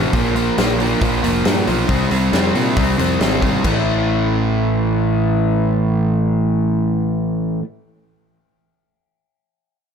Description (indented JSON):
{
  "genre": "hard rock",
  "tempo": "137 BPM",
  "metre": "4/4",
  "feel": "straight",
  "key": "A phrygian",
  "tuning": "A4 = 440 Hz",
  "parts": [
    { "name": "overdriven semi-hollow guitar", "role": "riff", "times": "0.0-7.6 s", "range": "F2 to C4", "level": "-20 LUFS", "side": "left 11 dB", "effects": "none" },
    { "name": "overdriven semi-hollow guitar", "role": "riff", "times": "0.0-7.6 s", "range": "F2 to C4", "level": "-20 LUFS", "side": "right 9 dB", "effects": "none" },
    { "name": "modern bright picked electric bass", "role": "bass", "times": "0.0-7.6 s", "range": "F1 to Bb2", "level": "-22 LUFS", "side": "equal", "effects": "none" },
    { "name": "huge arena drum kit", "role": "drums", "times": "0.1-3.7 s", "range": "crash cymbal, hi-hat, kick drum, snare drum", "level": "-21 LUFS", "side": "left 1 dB", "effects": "none" }
  ],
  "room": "studio reverb",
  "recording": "none",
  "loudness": "-15 LUFS",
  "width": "side -7 dB against mid",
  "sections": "0.0-3.6 A section; 3.6-7.1 B section",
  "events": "none",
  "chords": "0.1 Bb5; 1.9 C5; 3.6 A5"
}